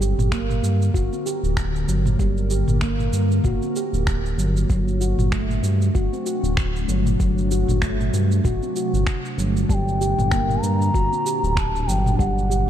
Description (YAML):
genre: organic downtempo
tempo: 96 BPM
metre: 4/4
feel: swing 57% on 16ths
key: G harmonic minor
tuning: A4 = 438 Hz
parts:
  - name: ethereal airy pad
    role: sustained chords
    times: 0.0-12.7 s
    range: Bb2 to Bb4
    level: -29 LUFS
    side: equal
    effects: ensemble chorus, built-in reverb, phaser, sidechain pumping
  - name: handpan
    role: arpeggios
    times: 0.0-12.6 s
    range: F#3 to G4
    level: -26 LUFS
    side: right 1 dB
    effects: digital delay
  - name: smooth synth bass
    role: bass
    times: 0.0-12.7 s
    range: D1 to G2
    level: -22 LUFS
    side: equal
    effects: tube saturation, sidechain pumping
  - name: organic electronic drum kit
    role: drums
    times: 0.0-12.7 s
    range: finger snaps, shaker, toms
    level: -28 LUFS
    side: right 1 dB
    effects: small room ambience
  - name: electronic kick drum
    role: drums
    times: 0.3-12.3 s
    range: none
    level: -22 LUFS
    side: equal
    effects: overdrive, small room ambience
  - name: mellow hollow bass bansuri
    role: melody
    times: 9.7-12.7 s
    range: F#5 to Bb5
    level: -24 LUFS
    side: left 2 dB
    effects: digital delay
room: light reverb, digital ambience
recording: dark, warm production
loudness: -19 LUFS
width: side -10 dB against mid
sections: 0.0-12.7 A section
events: none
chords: 0.0 Gm; 4.7 D7; 9.7 Gm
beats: 0.32 0.94 1.57 | 2.19 2.82 3.44 4.07 | 4.70 5.32 5.95 6.57 | 7.20 7.82 8.45 9.07 | 9.70 10.32 10.95 11.57 | 12.20